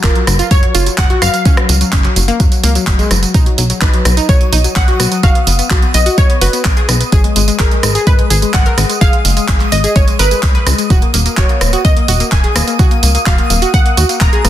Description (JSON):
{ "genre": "progressive house", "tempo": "127 BPM", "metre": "4/4", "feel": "straight", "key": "Eb minor", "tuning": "A4 = 441 Hz", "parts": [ { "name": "wide unison pluck", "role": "melody", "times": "0.0-14.5 s", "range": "Bb4 to Bb5", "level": "-20 LUFS", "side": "right 1 dB", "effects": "sidechain pumping, dub echo" }, { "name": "analog pluck", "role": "arpeggios", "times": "0.0-14.5 s", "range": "Gb3 to Cb5", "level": "-18 LUFS", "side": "left 3 dB", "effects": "chorus, sidechain pumping, tape echo" }, { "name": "plucky analog bass", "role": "bass", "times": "0.0-14.5 s", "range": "Eb1 to Gb2", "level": "-15 LUFS", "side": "equal", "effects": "sidechain pumping" }, { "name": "electronic kick drum", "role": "drums", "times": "0.0-14.3 s", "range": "none", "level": "-11 LUFS", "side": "equal", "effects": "overdrive" }, { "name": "house drum kit", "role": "drums", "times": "0.0-14.5 s", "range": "handclaps, hi-hat, rim click, tambourine", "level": "-17 LUFS", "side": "right 2 dB", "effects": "sidechain pumping on hats, sidechain pumping on perc, soft clipping on snare" }, { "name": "twinkling granular texture", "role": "texture", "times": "4.1-14.5 s", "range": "D#6", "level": "-25 LUFS", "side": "right 2 dB", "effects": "built-in reverb, sidechain pumping" } ], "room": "little or no reverb", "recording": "dense, heavily limited modern master", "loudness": "-9 LUFS", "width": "side -12 dB against mid", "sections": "0.0-14.5 A section", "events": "none", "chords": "0.0 Gbmaj7(no3); 3.3 B; 7.1 Abm; 10.9 Ebm" }